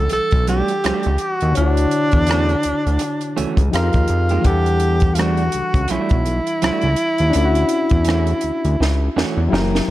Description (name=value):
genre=R&B, neo-soul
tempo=83 BPM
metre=4/4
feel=swing 58% on 16ths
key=unclear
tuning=A4 = 440 Hz
part: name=warm tenor saxophone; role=melody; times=0.0-9.5 s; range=D4 to A4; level=-20 LUFS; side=equal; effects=none
part: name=barky reed electric piano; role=accompaniment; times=0.0-9.9 s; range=D3 to F#5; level=-25 LUFS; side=left 5 dB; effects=none
part: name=fat analog bass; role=bass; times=0.0-9.9 s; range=F#1 to F2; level=-19 LUFS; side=equal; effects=none
part: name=electric guitar through a small old amp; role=second line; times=0.1-9.8 s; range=E3 to G4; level=-25 LUFS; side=right 6 dB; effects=none
part: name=compact cocktail drum kit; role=drums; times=0.1-9.9 s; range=hi-hat, kick drum, rim click, snare drum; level=-21 LUFS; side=equal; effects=none
room=light reverb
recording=dark, warm production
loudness=-15 LUFS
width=side -15 dB against mid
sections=0.0-9.9 A section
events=drum fill 8.8-9.9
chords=0.0 Em11; 1.6 Dmaj9; 3.7 Fm11; 4.4 Em11; 7.3 Dmaj9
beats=0.11 0.83 | 1.55 2.28 3.00 3.72 | 4.45 5.17 5.89 6.62 | 7.34 8.06 8.78 9.51